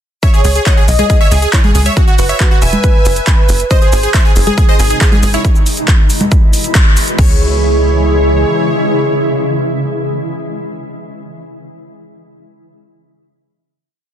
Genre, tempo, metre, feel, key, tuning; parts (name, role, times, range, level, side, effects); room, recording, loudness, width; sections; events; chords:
uplifting trance; 138 BPM; 4/4; straight; C# minor; A4 = 440 Hz
supersaw stab; melody; 0.2-10.2 s; E4 to G#5; -18 LUFS; right 1 dB; sidechain pumping, dub echo
warm velvety synth lead; second line; 0.2-10.2 s; G#4 to D#5; -18 LUFS; right 1 dB; chorus, dub echo
big-room dance drum kit; drums; 0.2-7.3 s; congas, crash cymbal, handclaps, hi-hat, shaker; -17 LUFS; equal; overdrive
electronic kick drum; drums; 0.2-7.3 s; -10 LUFS; equal; overdrive
tight sequencer bass; bass; 0.4-8.4 s; E1 to C#2; -14 LUFS; equal; sidechain pumping
shimmering ambient pad; sustained chords; 4.4-10.2 s; B2 to E4; -18 LUFS; left 1 dB; chorus, built-in reverb, sidechain pumping
digital ambience; dense, heavily limited modern master; -9 LUFS; side -10 dB against mid
0.2-7.2 drop; 7.2-10.7 final chord
drop 0.2-7.2; band accent 6.8
0.2 C#m; 2.0 F#5; 3.7 G#; 5.4 E; 7.2 C#m